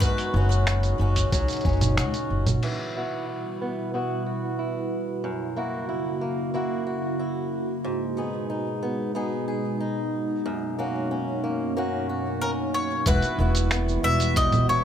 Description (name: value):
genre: folktronica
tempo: 92 BPM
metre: 4/4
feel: straight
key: unclear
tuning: A4 = 440 Hz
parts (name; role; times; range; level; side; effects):
- bowl-back mandolin; melody; 0.0-2.3, 12.4-14.8 s; A#4 to E5; -27 LUFS; left 2 dB; digital delay
- warbly tape-like pad; sustained chords; 0.0-14.8 s; F#2 to F#4; -29 LUFS; right 1 dB; chorus, built-in reverb
- fingerpicked swing-style acoustic guitar; arpeggios; 0.0-14.8 s; F#2 to G#4; -30 LUFS; equal; low-pass filter, digital delay
- electronic kick drum; drums; 0.0-1.8, 13.1-14.5 s; none; -25 LUFS; equal; overdrive
- lo-fi sampler-style drum kit; drums; 0.0-2.8, 13.1-14.7 s; congas, crash cymbal, finger snaps, hi-hat, shaker; -27 LUFS; right 2 dB; overdrive
- upright bass; bass; 0.3-2.5, 13.1-14.8 s; E1 to C#2; -23 LUFS; equal; none
room: light reverb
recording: none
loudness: -23 LUFS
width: side -9 dB against mid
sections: 0.0-2.6 A section; 2.6-13.1 B section; 13.1-14.8 A section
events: filter sweep on steel-string acoustic guitar 2.6-13.1; filter sweep on ambient pad 2.6-13.1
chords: 0.0 Bmaj9/F#; 2.6 Emadd9; 5.2 F#7; 7.8 G#m7; 10.5 Bmaj9/F#; 13.1 Emadd9